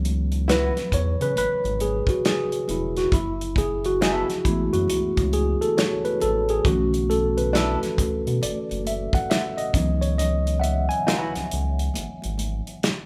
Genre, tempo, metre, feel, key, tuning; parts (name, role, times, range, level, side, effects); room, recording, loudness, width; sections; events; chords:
R&B, neo-soul; 68 BPM; 4/4; swing 63% on 16ths; C# minor; A4 = 440 Hz
mellow tine electric piano; accompaniment; 0.0-13.1 s; D3 to G#5; -26 LUFS; equal
round analog bass; bass; 0.0-12.6 s; E1 to C#3; -28 LUFS; equal
congas; percussion; 0.0-13.1 s; -43 LUFS; equal
warm soul drum kit; drums; 0.1-13.1 s; hi-hat, kick drum, snare drum; -28 LUFS; equal
hollow-body jazz guitar; second line; 0.5-11.3 s; B3 to B4; -30 LUFS; equal; wah
light reverb; band playing live in one room; -23 LUFS; mono
0.0-13.1 A section
tine electric piano solo 0.0-13.1; kick muted 10.2-13.1
0.0 C#m11; 3.1 F#m11; 6.7 Bm11; 9.7 C#m11